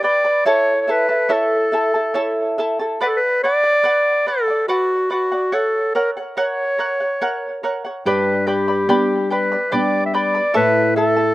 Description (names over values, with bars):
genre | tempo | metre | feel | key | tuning
andean folk, Andean ensemble | 71 BPM | 3/4 | straight | B minor | A4 = 441 Hz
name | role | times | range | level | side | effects
clear clarinet | melody | 0.0-11.3 s | F#4 to E5 | -17 LUFS | equal | slapback echo
charango | accompaniment | 0.0-11.3 s | E4 to B5 | -21 LUFS | equal | slapback echo
nylon-string guitar | accompaniment | 8.1-11.3 s | G2 to D4 | -22 LUFS | left 1 dB | none
room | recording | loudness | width
light reverb | recorded outdoors, with no room sound | -16 LUFS | side -17 dB against mid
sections
0.0-11.3 A section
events
none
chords
0.5 A; 3.0 Bm; 5.5 F#; 8.0 G; 10.6 A